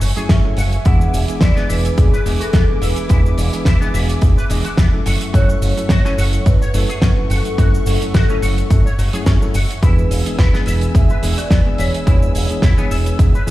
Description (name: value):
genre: nu-disco, nu disco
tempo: 107 BPM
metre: 4/4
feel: swing 54% on 16ths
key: unclear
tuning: A4 = 440 Hz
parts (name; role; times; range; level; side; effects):
- muted symphonic violin section; sustained chords; 0.0-13.5 s; A3 to E6; -30 LUFS; left 1 dB; sidechain pumping
- electric guitar with an envelope filter; riff; 0.0-13.5 s; E3 to F#5; -28 LUFS; left 1 dB; ensemble chorus, tape echo
- fingered electric bass with an envelope filter; bass; 0.0-13.5 s; E1 to F#2; -17 LUFS; equal; none
- damped 70s drum kit; drums; 0.0-13.5 s; cabasa, hi-hat, snare drum; -24 LUFS; right 1 dB; none
- bell-like tine electric piano; accompaniment; 0.2-13.5 s; E3 to A4; -24 LUFS; equal; medium stereo tremolo, tape echo
- vibraphone with soft mallets; melody; 0.3-12.9 s; G#4 to F#5; -26 LUFS; equal; digital delay
- electronic kick drum; drums; 0.3-13.3 s; none; -14 LUFS; equal; none
room: studio reverb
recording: played on a big sound system in a bare room, stone room reverb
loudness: -13 LUFS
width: side -16 dB against mid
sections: 0.0-13.5 A section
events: none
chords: 0.0 F#m7; 0.9 E7; 5.1 F#m7; 9.8 E7